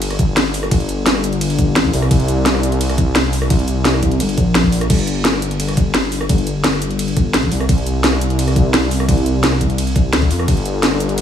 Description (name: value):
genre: liquid drum and bass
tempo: 172 BPM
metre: 4/4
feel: straight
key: unclear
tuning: A4 = 439 Hz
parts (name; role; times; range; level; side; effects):
- dark detuned saw bass; bass; 0.0-11.2 s; G1 to F2; -17 LUFS; left 1 dB; tube saturation
- drum and bass drum kit; drums; 0.0-11.2 s; cabasa, crash cymbal, hi-hat, ride cymbal, rim click, snare drum; -18 LUFS; equal; overdrive
- electronic kick drum; drums; 0.2-10.6 s; none; -16 LUFS; equal; overdrive
room: little or no reverb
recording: none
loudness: -14 LUFS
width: side -9 dB against mid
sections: 0.0-11.2 A section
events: none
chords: none